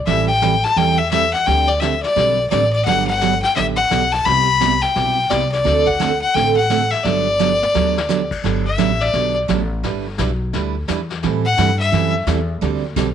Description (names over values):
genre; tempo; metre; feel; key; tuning
country, western swing; 172 BPM; 4/4; swing 63% on 8ths; G major; A4 = 440 Hz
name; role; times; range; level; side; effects
upright bass; bass; 0.0-13.1 s; G1 to A2; -22 LUFS; left 1 dB; none
clear fiddle; melody; 0.1-12.1 s; D5 to B5; -17 LUFS; left 3 dB; none
picked steel-string acoustic guitar; accompaniment; 0.1-13.1 s; C3 to B4; -20 LUFS; right 10 dB; none
vintage brush drum kit; drums; 0.1-13.1 s; brushed snare drum, crash cymbal, hi-hat, kick drum, snare drum, toms; -29 LUFS; left 8 dB; none
room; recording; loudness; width
light reverb, small room ambience; 1960s-style stereo with parts hard left and right; -15 LUFS; side -9 dB against mid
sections
0.0-8.4 A section; 8.4-13.1 B section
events
drum fill 7.4-8.1; fiddle solo 8.4-13.1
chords
0.1 Am7; 1.5 D7sus4; 2.9 Gmaj7; 4.3 Cmaj7; 5.7 D7; 7.0 Gmaj7; 9.8 Em7/G; 11.2 Am7; 12.6 D7sus4